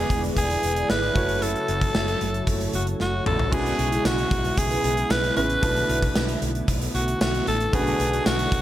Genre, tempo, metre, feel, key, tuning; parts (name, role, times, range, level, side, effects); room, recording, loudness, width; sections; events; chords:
1980s-style pop; 114 BPM; 4/4; straight; A4 = 440 Hz
raspy alto saxophone; melody; 0.0-8.6 s; F#4 to B4; -25 LUFS; equal
clear concert grand piano; accompaniment; 0.0-8.6 s; B2 to D5; -32 LUFS; right 1 dB
brassy analog pad; sustained chords; 0.0-8.6 s; C#3 to F#4; -31 LUFS; equal; chorus
mellow synth brass; stabs; 0.0-8.5 s; B3 to D5; -33 LUFS; equal; chorus
woody fretless electric bass; bass; 0.0-8.6 s; E1 to B1; -28 LUFS; equal
gated 80s drum kit; drums; 0.1-8.6 s; crash cymbal, hi-hat, kick drum, snare drum, tambourine, toms; -26 LUFS; equal
light reverb, small room ambience; -21 LUFS; side -13 dB against mid
0.0-3.5 A section; 3.5-8.6 B section
drum fill 3.0-3.5
0.0 E7; 1.2 F#m7; 3.5 C#m7/B; 5.6 E7sus4/B; 7.7 Bm7